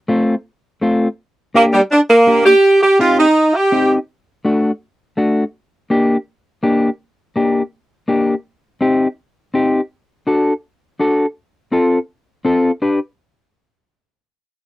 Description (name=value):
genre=latin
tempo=165 BPM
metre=4/4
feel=straight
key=G minor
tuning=A4 = 441 Hz
part: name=mellow electric guitar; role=accompaniment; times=0.1-13.0 s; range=A3 to B4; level=-14 LUFS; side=left 1 dB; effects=cassette tape
part: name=warm saxophone section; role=melody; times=1.6-3.9 s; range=G3 to G4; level=-10 LUFS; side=right 1 dB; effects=none
room=moderate booth ambience, RT60 0.2 s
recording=home recording on cassette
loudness=-14 LUFS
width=side -17 dB against mid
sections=0.0-7.0 A section; 7.0-12.8 B section; 12.8-14.3 C section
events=none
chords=0.0 F; 1.2 Gm; 2.6 Cm; 4.1 D; 5.5 Gm; 8.5 Cm; 9.9 D; 11.4 F; 12.8 G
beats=0.09 0.45 0.81 | 1.18 1.54 1.91 2.27 | 2.63 3.00 3.36 3.73 | 4.09 4.45 4.82 5.18 | 5.54 5.91 6.27 6.63 | 7.00 7.36 7.73 8.09 | 8.45 8.82 9.18 9.54 | 9.91 10.27 10.63 11.00 | 11.36 11.73 12.09 12.45 | 12.82